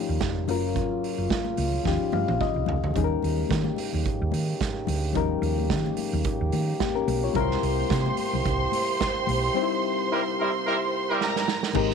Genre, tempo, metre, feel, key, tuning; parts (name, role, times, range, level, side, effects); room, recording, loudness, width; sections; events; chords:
disco; 109 BPM; 4/4; swing 56% on 16ths; A4 = 440 Hz
reed electric piano; accompaniment; 0.0-11.9 s; F3 to F5; -29 LUFS; left 12 dB
dark French horn section; sustained chords; 0.0-11.9 s; C3 to G4; -32 LUFS; right 2 dB
hollow-body short-scale fingered electric bass; bass; 0.1-11.9 s; F1 to Eb3; -27 LUFS; right 2 dB
vintage drum kit; drums; 0.2-11.9 s; crash cymbal, hi-hat, kick drum, snare drum, toms; -30 LUFS; right 5 dB
congas; percussion; 0.5-11.9 s; -35 LUFS; left 12 dB
warm studio violin section; second line; 7.4-11.9 s; C4 to C6; -28 LUFS; right 2 dB
warm horn section; stabs; 10.1-11.5 s; G3 to Bb4; -27 LUFS; right 2 dB
light reverb, studio ambience; 1960s-style stereo; -23 LUFS; side -6 dB against mid
0.0-3.0 A section; 3.0-11.8 B section
drum fill 1.9-3.0, 11.2-11.8; reed electric piano fill 1.9-3.0; band accent 9.6-11.8
0.5 Gbmaj7; 1.9 Eb9; 3.0 Eb7; 7.4 C7